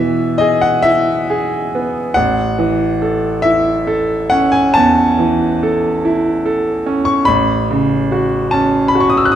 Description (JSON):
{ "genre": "classical, romantic nocturne for solo piano", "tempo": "44-49 BPM (dotted quarters)", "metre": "12/8", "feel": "rubato", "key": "unclear", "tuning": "A4 = 439 Hz", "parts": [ { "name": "bright grand piano", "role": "solo", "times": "0.0-9.4 s", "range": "A1 to F#6", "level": "-12 LUFS", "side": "equal", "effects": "none" } ], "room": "wet recital hall reverb, RT60 1.4 s", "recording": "dark, warm production", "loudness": "-12 LUFS", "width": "side -10 dB against mid", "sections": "0.0-9.4 A section", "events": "none", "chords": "0.0 E; 2.1 A; 7.3 F#m/A" }